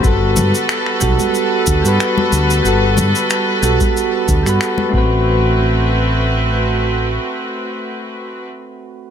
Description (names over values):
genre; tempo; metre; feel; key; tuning
sunset chillout; 92 BPM; 4/4; swing 54% on 16ths; A dorian; A4 = 442 Hz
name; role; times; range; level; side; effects
soft electric-piano-like synth keys; accompaniment; 0.0-9.1 s; G3 to B4; -18 LUFS; moving between left 3 dB and right 9 dB; chorus, auto-pan, tape echo
rich chamber string section; sustained chords; 0.0-8.5 s; G3 to B4; -20 LUFS; equal; none
mellow fretless electric bass; bass; 0.0-7.2 s; G1 to G2; -16 LUFS; equal; none
cabasa and finger snaps; drums; 0.0-4.8 s; none; -23 LUFS; equal; none
electronic kick drum; drums; 0.0-5.1 s; none; -18 LUFS; equal; none
congas; percussion; 0.4-4.9 s; none; -23 LUFS; left 4 dB; none
room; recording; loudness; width
light reverb, studio reverb; none; -13 LUFS; side -8 dB against mid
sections
0.0-5.3 A section; 5.3-7.9 B section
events
none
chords
0.0 Gmaj9; 4.9 Am69